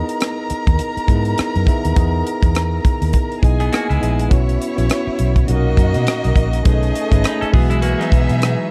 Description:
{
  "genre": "lush 1970s-style soul",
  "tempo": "102 BPM",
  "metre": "4/4",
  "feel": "swing 58% on 16ths",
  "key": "unclear",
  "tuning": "A4 = 442 Hz",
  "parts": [
    { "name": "rich studio violin section", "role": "second line", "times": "0.0-8.7 s", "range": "A3 to A#5", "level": "-26 LUFS", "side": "equal", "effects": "none" },
    { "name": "tine electric piano", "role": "accompaniment", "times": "0.0-8.7 s", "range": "A#2 to E5", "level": "-25 LUFS", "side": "equal", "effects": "none" },
    { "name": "tight funk drum kit", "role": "drums", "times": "0.1-8.6 s", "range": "hi-hat, kick drum, rim click", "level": "-18 LUFS", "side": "equal", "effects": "none" },
    { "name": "vintage muted fingered electric bass", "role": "bass", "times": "0.5-8.5 s", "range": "G#1 to B2", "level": "-20 LUFS", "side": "equal", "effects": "none" },
    { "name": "clean electric guitar", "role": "riff", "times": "3.6-8.7 s", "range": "F#3 to B4", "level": "-28 LUFS", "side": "equal", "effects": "spring reverb" }
  ],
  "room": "studio reverb",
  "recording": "dark, warm production",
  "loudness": "-17 LUFS",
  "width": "mono",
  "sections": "0.0-4.3 A section; 4.3-8.7 B section",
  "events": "none",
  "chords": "0.0 Emaj7; 4.3 F#7sus4; 5.5 Bmaj9; 6.7 B13; 7.5 Emaj9/B"
}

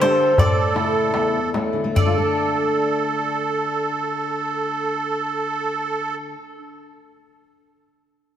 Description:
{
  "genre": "greek folk, Greek bouzouki band",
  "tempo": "70-84 BPM",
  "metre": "2/4",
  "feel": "straight",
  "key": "unclear",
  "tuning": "A4 = 439 Hz",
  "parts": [
    { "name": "Greek bouzouki", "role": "melody", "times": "0.0-6.6 s", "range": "C5 to D5", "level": "-22 LUFS", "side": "equal", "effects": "none" },
    { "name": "musette accordion", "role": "second line", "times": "0.0-6.2 s", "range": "A4", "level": "-23 LUFS", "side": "right 4 dB", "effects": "none" },
    { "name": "fingerpicked steel-string acoustic guitar", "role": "accompaniment", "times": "0.0-6.8 s", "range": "E2 to A4", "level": "-24 LUFS", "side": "left 2 dB", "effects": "none" },
    { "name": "darbuka", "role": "percussion", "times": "0.0-2.4 s", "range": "none", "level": "-22 LUFS", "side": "left 1 dB", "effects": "none" }
  ],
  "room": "wet plate reverb, RT60 2.8 s",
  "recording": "heard from further back in the room",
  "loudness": "-19 LUFS",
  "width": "side -10 dB against mid",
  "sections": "0.0-2.0 A section; 2.0-5.4 B section",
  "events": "slowing down 0.0-2.0",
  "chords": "0.4 A; 2.0 D5"
}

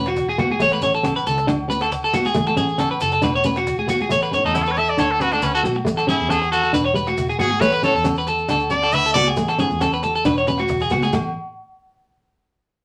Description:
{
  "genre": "highlife guitar band",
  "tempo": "137 BPM",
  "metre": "4/4",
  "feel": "straight",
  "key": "A major",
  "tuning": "A4 = 438 Hz",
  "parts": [
    { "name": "nylon-string guitar", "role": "accompaniment", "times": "0.0-11.3 s", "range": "G#3 to D4", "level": "-25 LUFS", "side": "equal", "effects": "none" },
    { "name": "electric guitar at the edge of break-up", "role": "arpeggios", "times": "0.0-11.2 s", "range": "F#4 to C#5", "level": "-22 LUFS", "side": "equal", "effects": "none" },
    { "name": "fingered electric bass", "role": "bass", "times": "0.0-11.3 s", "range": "E1 to A2", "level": "-30 LUFS", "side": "equal", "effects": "none" },
    { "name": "cajon", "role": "drums", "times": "0.1-11.2 s", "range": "none", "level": "-35 LUFS", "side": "equal", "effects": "none" },
    { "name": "agogo bells", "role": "percussion", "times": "0.1-11.2 s", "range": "none", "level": "-34 LUFS", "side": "equal", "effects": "none" },
    { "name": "maracas", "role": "percussion", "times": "0.2-11.3 s", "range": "none", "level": "-42 LUFS", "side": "equal", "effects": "none" },
    { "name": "congas", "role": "percussion", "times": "0.4-11.3 s", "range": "none", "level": "-34 LUFS", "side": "equal", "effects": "none" },
    { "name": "brilliant trumpet", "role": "melody", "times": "4.5-9.3 s", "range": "C#4 to E5", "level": "-22 LUFS", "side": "equal", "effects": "none" }
  ],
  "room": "wet studio reverb, RT60 0.6 s",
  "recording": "none",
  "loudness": "-19 LUFS",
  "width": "mono",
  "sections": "0.0-4.1 A section; 4.1-11.1 B section; 11.1-12.8 C section",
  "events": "trumpet solo 4.1-11.1; drum fill 10.3-11.1",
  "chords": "0.0 E; 0.6 A; 1.5 D; 2.4 A; 3.2 E; 4.1 A; 5.0 D; 5.9 A; 6.7 E; 7.6 A; 8.5 D5; 9.4 A; 10.3 E; 11.1 N.C."
}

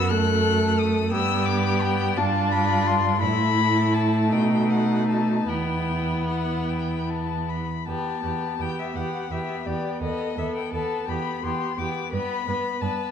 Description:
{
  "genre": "classical, slow romantic movement for string quartet",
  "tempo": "49-60 BPM (dotted quarters)",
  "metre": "6/8",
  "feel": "rubato",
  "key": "E minor",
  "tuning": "A4 = 438 Hz",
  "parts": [
    { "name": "rich violin", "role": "melody", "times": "0.0-13.1 s", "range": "D5 to F#6", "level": "-28 LUFS", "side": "left 10 dB", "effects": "none" },
    { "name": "rich violin", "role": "second line", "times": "0.0-13.1 s", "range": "D#4 to B4", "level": "-30 LUFS", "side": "left 4 dB", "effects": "none" },
    { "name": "rich viola", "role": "accompaniment", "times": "0.0-13.1 s", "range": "A3 to D4", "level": "-26 LUFS", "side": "right 1 dB", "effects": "none" },
    { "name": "rich cello", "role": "bass", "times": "0.0-12.9 s", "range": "D#2 to B2", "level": "-27 LUFS", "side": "right 4 dB", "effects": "none" }
  ],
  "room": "wet recital hall reverb, RT60 1.6 s",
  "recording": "dark, warm production",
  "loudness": "-22 LUFS",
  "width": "side -8 dB against mid",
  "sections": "0.0-7.9 A section; 7.9-13.1 A section",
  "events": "none",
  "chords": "0.0 B7/F# (rootless); 1.1 G6; 2.2 G5; 3.2 A5; 4.3 B7; 5.5 Em; 10.0 B7; 11.1 Em; 12.1 G"
}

